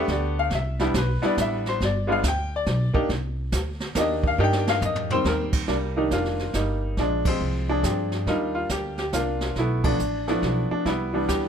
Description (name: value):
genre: jazz piano trio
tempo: 139 BPM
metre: 3/4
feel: swing 65% on 8ths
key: C minor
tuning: A4 = 439 Hz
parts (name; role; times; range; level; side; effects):
- clear baby grand piano; melody; 0.0-11.5 s; Eb3 to G5; -24 LUFS; left 1 dB; none
- upright bass; bass; 0.0-11.5 s; F1 to G2; -27 LUFS; equal; none
- jazz brush drum kit; drums; 0.1-11.5 s; brushed snare drum, crash cymbal, hi-hat, kick drum, ride cymbal, snare drum, toms; -29 LUFS; right 2 dB; none
room: little or no reverb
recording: none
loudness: -22 LUFS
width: side -8 dB against mid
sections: 0.0-5.7 A section; 5.7-11.5 B section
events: grand piano solo 0.0-5.7; drum fill 4.4-5.2; band accent 7.2, 9.8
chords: 0.0 G9; 0.5 Cmaj9; 1.8 G; 3.1 Cm9; 7.0 Bb13; 8.3 Ebmaj7; 9.6 Dm69; 10.9 Cmaj9